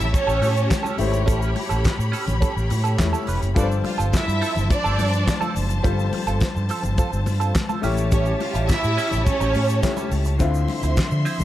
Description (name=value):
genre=disco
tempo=105 BPM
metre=4/4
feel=straight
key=unclear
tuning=A4 = 440 Hz
part: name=warm symphonic violin section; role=second line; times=0.0-10.1 s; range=C#4 to F5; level=-25 LUFS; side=right 2 dB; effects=none
part: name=clean electric guitar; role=accompaniment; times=0.0-11.4 s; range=F3 to B4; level=-30 LUFS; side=right 6 dB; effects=wah
part: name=clear baby grand piano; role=accompaniment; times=0.0-11.4 s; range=D3 to C#5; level=-30 LUFS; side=left 6 dB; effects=none
part: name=clear studio string section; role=sustained chords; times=0.0-11.4 s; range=F3 to C6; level=-30 LUFS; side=equal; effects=none
part: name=overdriven fingered electric bass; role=bass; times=0.0-11.4 s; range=F1 to D3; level=-22 LUFS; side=equal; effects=none
part: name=tube shaker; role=percussion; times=0.0-11.4 s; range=none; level=-42 LUFS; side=right 7 dB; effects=none
part: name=damped 70s drum kit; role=drums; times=0.1-11.4 s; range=handclaps, hi-hat, kick drum, snare drum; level=-23 LUFS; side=equal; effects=none
part: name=congas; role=percussion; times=0.1-11.4 s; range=none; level=-33 LUFS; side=left 5 dB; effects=none
room=little or no reverb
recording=none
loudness=-19 LUFS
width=side -13 dB against mid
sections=0.0-11.4 A section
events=none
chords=0.0 A7; 3.6 G9sus4; 7.8 A7; 10.4 Dm9